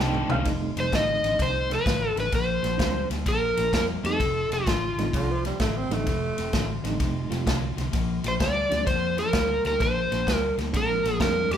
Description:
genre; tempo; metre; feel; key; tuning
electric blues shuffle; 128 BPM; 4/4; swing 66% on 8ths; F mixolydian; A4 = 436 Hz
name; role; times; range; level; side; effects
overdriven reed electric piano; accompaniment; 0.0-11.6 s; F3 to G5; -32 LUFS; right 4 dB; fast tremolo
cranked stack guitar; riff; 0.0-11.6 s; F2 to G3; -32 LUFS; left 3 dB; overdrive
vintage muted fingered electric bass; bass; 0.0-11.6 s; F1 to F2; -31 LUFS; right 1 dB; none
natural country drum kit; drums; 0.1-11.6 s; kick drum, ride cymbal, snare drum, toms; -28 LUFS; equal; none
overdriven slide guitar; melody; 0.8-5.4, 8.3-11.6 s; F4 to Eb5; -25 LUFS; equal; none
growling tenor saxophone; second line; 5.1-6.8 s; D3 to C4; -31 LUFS; right 2 dB; none
room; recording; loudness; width
moderate large studio reverb, RT60 1.2 s; band playing live in one room; -22 LUFS; side -9 dB against mid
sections
0.5-11.6 A section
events
drum fill 0.0-0.5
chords
0.5 F9; 2.3 Bb9; 4.2 F9; 7.9 Bb9

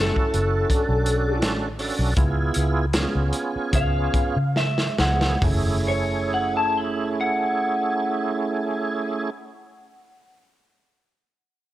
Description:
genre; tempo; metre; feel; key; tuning
straight-eighth soul blues; 68-84 BPM; 4/4; straight; F# minor; A4 = 440 Hz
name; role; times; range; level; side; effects
electric guitar through a small old amp; melody; 0.0-10.4 s; A4 to B5; -25 LUFS; left 1 dB; none
tonewheel organ; accompaniment; 0.0-9.3 s; E#3 to A4; -26 LUFS; right 3 dB; overdrive, chorus vibrato, slow rotary speaker
vintage muted fingered electric bass; bass; 0.0-9.3 s; F#1 to C#3; -24 LUFS; equal; none
crunchy breakbeat drum kit; drums; 0.2-5.6 s; hi-hat, kick drum, snare drum, toms; -24 LUFS; equal; none
room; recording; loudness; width
light reverb; none; -20 LUFS; side -14 dB against mid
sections
0.0-5.4 A section; 5.4-9.0 B section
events
slowing down 0.0-5.4; drum fill 4.6-5.4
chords
0.0 F#m7; 0.7 Bm9; 2.2 C#7#9; 5.4 F#m9

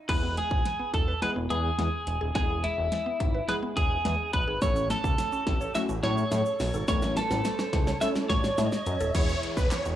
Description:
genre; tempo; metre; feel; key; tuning
dance-pop; 106 BPM; 4/4; straight; E major; A4 = 440 Hz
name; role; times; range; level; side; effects
twelve-string electric guitar; melody; 0.1-9.1 s; E4 to E5; -30 LUFS; equal; cassette tape, analog delay
punchy chord stab; accompaniment; 0.1-10.0 s; E3 to A4; -36 LUFS; equal; chorus, sidechain pumping
mallet-like synth pluck; arpeggios; 0.1-9.1 s; G#3 to C#5; -37 LUFS; left 2 dB; chorus, sidechain pumping, analog delay
fat analog bass; bass; 0.1-10.0 s; D#1 to A2; -30 LUFS; equal; sidechain pumping
pop drum kit; drums; 0.1-9.8 s; crash cymbal, handclaps, hi-hat, kick drum, snare drum; -29 LUFS; equal; cassette tape
riser and downlifter; sound effects; 2.1-10.0 s; none; -41 LUFS; equal; none
tube shaker; percussion; 4.6-10.0 s; none; -49 LUFS; right 5 dB; none
supersaw chords; melody; 9.1-9.8 s; B4 to C#5; -31 LUFS; right 2 dB; phaser, cassette tape
sweeping resonant pad; sustained chords; 9.1-10.0 s; E3 to B4; -42 LUFS; left 1 dB; chorus, sidechain pumping
room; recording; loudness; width
light reverb; home recording on cassette, small room reverb; -25 LUFS; side -12 dB against mid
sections
0.1-9.1 A section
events
build-up 0.1-9.1; drum fill 0.1-9.1; riser 2.1-9.1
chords
0.1 E; 4.6 A; 9.1 E

